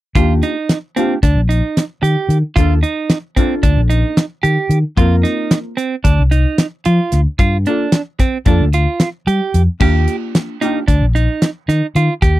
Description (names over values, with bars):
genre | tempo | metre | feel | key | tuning
progressive instrumental, band music in an uneven meter | 224 BPM (eighths) | 9/8 | straight | Eb lydian | A4 = 437 Hz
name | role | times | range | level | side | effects
hollow-body jazz guitar | accompaniment | 0.2-10.8 s | Bb3 to Bb4 | -19 LUFS | left 1 dB | double-tracked left and right
clean electric guitar | arpeggios | 0.2-12.4 s | C4 to G4 | -19 LUFS | right 4 dB | none
fingered electric bass | bass | 0.2-12.4 s | Bb1 to G3 | -13 LUFS | left 1 dB | none
damped 70s drum kit | drums | 0.2-12.3 s | crash cymbal, hi-hat, kick drum, snare drum | -15 LUFS | equal | none
room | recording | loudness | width
little or no reverb | dry, close 1970s-style studio recording | -13 LUFS | side -16 dB against mid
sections
0.2-9.8 A section; 9.8-12.4 B section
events
none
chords
0.2 Ebmaj7; 5.0 Fsus4; 7.4 Gm7; 9.8 Ebmaj7